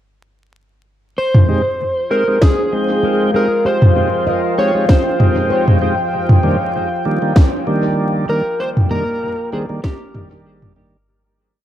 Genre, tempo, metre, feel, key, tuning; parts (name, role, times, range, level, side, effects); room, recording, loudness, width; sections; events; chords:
ambient dub; 97 BPM; 4/4; swing 54% on 16ths; F minor; A4 = 441 Hz
electric slide guitar; melody; 1.2-10.7 s; G4 to Db5; -19 LUFS; equal; dub echo
deep dark ambient pad; sustained chords; 2.2-11.1 s; F4 to Bb5; -22 LUFS; left 1 dB; chorus, built-in reverb
organic electronic drum kit; drums; 1.3-10.7 s; snare drum, toms; -15 LUFS; equal; overdrive, dub echo
tonewheel organ; stabs; 1.5-11.0 s; Eb3 to G5; -20 LUFS; right 1 dB; slow rotary speaker, low-pass filter, dub echo
electronic kick drum; drums; 2.4-10.0 s; -11 LUFS; equal; overdrive
handpan; arpeggios; 3.0-11.3 s; Ab3 to Eb5; -24 LUFS; left 2 dB; dub echo
moderate spring reverb, RT60 1.7 s, digital ambience; vinyl crackle, faint mains hum; -13 LUFS; side -11 dB against mid
1.2-11.1 groove
filter sweep on tonewheel organ 1.2-11.1; fade-out 7.8-11.1
1.2 Fm7; 6.1 Cm7 (rootless)